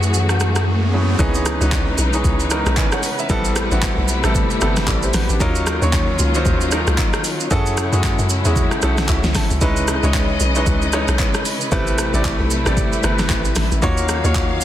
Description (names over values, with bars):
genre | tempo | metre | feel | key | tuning
amapiano | 114 BPM | 4/4 | swing 58% on 16ths | unclear | A4 = 440 Hz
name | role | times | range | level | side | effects
bright concert grand piano | accompaniment | 0.0-14.6 s | E3 to A5 | -22 LUFS | equal | none
warm studio string section | sustained chords | 0.0-14.6 s | C3 to E#5 | -24 LUFS | left 2 dB | sidechain pumping
punchy sub bass | bass | 0.0-1.2 s | F#2 | -17 LUFS | equal | none
deep house drum kit | drums | 0.0-14.6 s | handclaps, hi-hat, kick drum, rim click, shaker, snare drum | -20 LUFS | equal | soft clipping on snare
riser | sound effects | 0.2-1.2 s | none | -28 LUFS | right 1 dB | none
hollow log drum bass | bass | 1.2-14.6 s | G1 to F#2 | -20 LUFS | equal | none
room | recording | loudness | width
light reverb, digital ambience | dense, heavily limited modern master | -15 LUFS | side -12 dB against mid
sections
0.0-1.2 A section; 1.2-14.6 B section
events
riser 0.2-1.2; silent gap 0.7-1.2; drop 1.2-14.6; grand piano fill 8.8-9.6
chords
0.0 F#m9; 1.2 C#m9; 3.3 Am9; 5.4 D#m9; 7.5 F#m9; 9.6 C#m9; 11.7 Am9; 13.8 D#m9